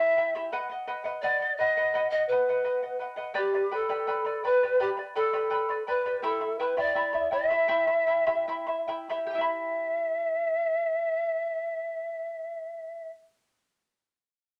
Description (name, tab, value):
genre	andean folk, Andean ensemble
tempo	68-84 BPM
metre	2/4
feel	straight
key	E minor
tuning	A4 = 441 Hz
part	polished pan flute	melody	0.0-13.1 s	G4 to E5	-28 LUFS	equal	none
part	charango	accompaniment	0.0-13.2 s	E4 to B5	-34 LUFS	equal	none
room	wet club ambience, RT60 0.5 s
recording	none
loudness	-28 LUFS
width	mono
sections	0.0-9.3 A section; 9.3-12.9 B section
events	slowing down 6.2-9.3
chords	0.0 Em; 0.5 B; 3.4 G; 6.2 Em